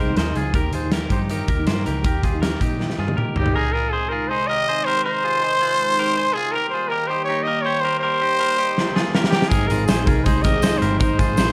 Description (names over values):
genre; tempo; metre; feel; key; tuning
jangly indie pop; 161 BPM; 4/4; straight; Ab major; A4 = 440 Hz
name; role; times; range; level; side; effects
growling trumpet; melody; 0.0-11.5 s; G4 to Eb5; -24 LUFS; equal; none
fingerpicked steel-string acoustic guitar; accompaniment; 0.0-3.6, 9.5-11.5 s; Ab2 to Bb4; -29 LUFS; equal; none
clean electric guitar; arpeggios; 0.0-11.5 s; Eb4 to C5; -29 LUFS; equal; none
vintage muted picked electric bass; bass; 0.0-3.5, 9.5-11.5 s; G1 to Bb2; -27 LUFS; equal; none
big rock drum kit; drums; 0.2-3.5, 8.8-11.5 s; hi-hat, kick drum, snare drum, toms; -23 LUFS; equal; none
phased analog pad; sustained chords; 3.6-11.5 s; C3 to G4; -33 LUFS; equal; phaser, chorus
tambourine; percussion; 9.5-11.5 s; none; -42 LUFS; equal; none
room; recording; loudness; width
moderate club reverb, RT60 0.7 s; dark, warm production; -20 LUFS; mono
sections
0.0-3.5 A section; 3.5-11.5 B section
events
drum fill 2.8-3.5, 8.8-9.5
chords
0.0 Ab; 6.5 Eb; 9.5 Ab